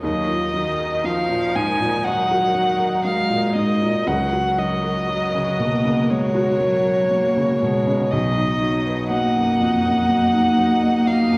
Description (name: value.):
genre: neoclassical piano and strings.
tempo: 60 BPM.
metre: 4/4.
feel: rubato.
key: unclear.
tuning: A4 = 440 Hz.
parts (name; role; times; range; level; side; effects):
muted violin; melody; 0.0-11.4 s; C#5 to G#5; -24 LUFS; equal; none.
muted cello; second line; 0.0-11.4 s; D#3 to A#3; -25 LUFS; equal; none.
felt-muted upright piano; accompaniment; 0.0-11.4 s; B1 to D#5; -26 LUFS; equal; none.
muted studio string section; sustained chords; 0.0-11.4 s; D#3 to D#5; -34 LUFS; equal; none.
room: wet recital hall reverb, RT60 1.4 s.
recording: recorded in a church or concert hall.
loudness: -20 LUFS.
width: mono.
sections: 0.0-11.4 A section.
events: none.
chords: 0.0 D#madd9; 4.1 F#/C#; 8.1 B.